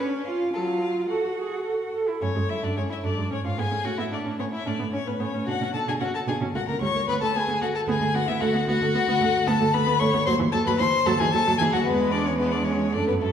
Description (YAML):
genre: quick classical-period movement for string quartet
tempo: 112 BPM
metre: 3/4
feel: straight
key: F# minor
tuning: A4 = 440 Hz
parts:
  - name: warm violin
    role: melody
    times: 0.0-13.3 s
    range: A4 to C#6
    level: -28 LUFS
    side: left 7 dB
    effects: none
  - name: rich violin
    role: second line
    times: 0.0-13.3 s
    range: A3 to C#5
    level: -28 LUFS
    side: left 2 dB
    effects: none
  - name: rich viola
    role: accompaniment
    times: 0.0-13.3 s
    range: E3 to A4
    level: -28 LUFS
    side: right 2 dB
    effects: none
  - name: clear cello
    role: bass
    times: 0.0-13.3 s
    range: C#2 to F#4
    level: -27 LUFS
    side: right 3 dB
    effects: none
room: wet recital hall reverb, RT60 1.5 s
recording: heard from further back in the room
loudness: -22 LUFS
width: side -8 dB against mid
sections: 0.0-2.2 A section; 2.2-13.3 B section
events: none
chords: 0.0 C#7; 0.5 F#m; 3.3 C#5/G#; 3.8 Bm11/A; 5.5 Bm; 6.5 F#/C#; 7.1 Bm7/D; 10.3 G#7b9b13/D#; 11.9 E